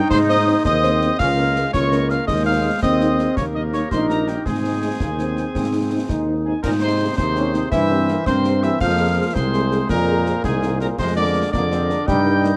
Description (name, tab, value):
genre	military-style march for wind band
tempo	110 BPM (dotted quarters)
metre	6/8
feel	straight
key	Ab major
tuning	A4 = 440 Hz
part	warm cornet	melody	0.0-12.5 s	G4 to G5	-27 LUFS	equal	none
part	warm woodwind section	second line	0.0-12.6 s	F4 to Eb5	-34 LUFS	equal	none
part	clear trombone section	sustained chords	0.0-12.6 s	Ab3 to E4	-26 LUFS	equal	none
part	piccolo	second line	0.1-12.6 s	G5 to G6	-30 LUFS	equal	none
part	mellow tuba	bass	0.1-12.5 s	Bb1 to Ab2	-24 LUFS	equal	none
part	concert snare drum, concert bass drum and clash cymbals	drums	0.1-12.6 s	none	-30 LUFS	equal	none
part	dark French horn section	accompaniment	0.3-12.5 s	G3 to C5	-30 LUFS	equal	none
part	clear euphonium	second line	6.5-12.6 s	Ab2 to G3	-27 LUFS	equal	none
room	light reverb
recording	dark, warm production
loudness	-19 LUFS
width	mono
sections	0.0-6.6 A section; 6.6-12.6 A section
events	none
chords	0.1 Ab; 1.2 Bbm/Db; 2.3 Ab/Eb; 3.4 Eb; 4.5 Ab; 7.7 C7/G; 8.8 Fm; 11.0 Bb7/F